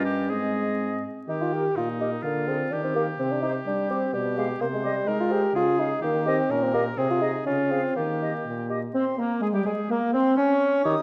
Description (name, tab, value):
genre	quick classical-period movement for wind quintet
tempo	126 BPM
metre	2/4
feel	straight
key	Eb major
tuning	A4 = 442 Hz
part	silver concert flute	melody	0.0-11.0 s	Bb4 to Eb6	-38 LUFS	equal	none
part	clear oboe	second line	0.0-10.9 s	Bb3 to Db5	-35 LUFS	equal	none
part	clear French horn	accompaniment	0.0-11.0 s	Bb2 to Db4	-32 LUFS	equal	none
part	dark clarinet	accompaniment	0.0-11.0 s	G3 to Ab4	-34 LUFS	equal	none
part	mellow bassoon	bass	0.0-11.0 s	G2 to G4	-28 LUFS	equal	none
room	wet recital hall reverb, RT60 1.7 s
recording	dark, warm production, vinyl crackle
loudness	-25 LUFS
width	mono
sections	0.0-1.3 A section; 1.3-8.9 B section; 8.9-11.0 A section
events	none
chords	0.3 Ab; 1.3 Eb; 2.2 Bb7/D; 2.7 Eb; 3.2 C5; 4.1 G7/B; 4.6 Cm; 5.1 Ab; 5.5 Db; 6.0 Eb; 7.0 Ab/C; 7.5 Db; 8.0 Eb; 8.9 Bbsus2; 9.4 N.C.; 9.9 Bbm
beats	| 0.30 0.79 | 1.28 1.77 | 2.24 2.72 | 3.19 3.67 | 4.14 4.61 | 5.07 5.55 | 6.02 6.50 | 6.98 7.46 | 7.96 8.45 | 8.94 9.42 | 9.90 10.38 | 10.85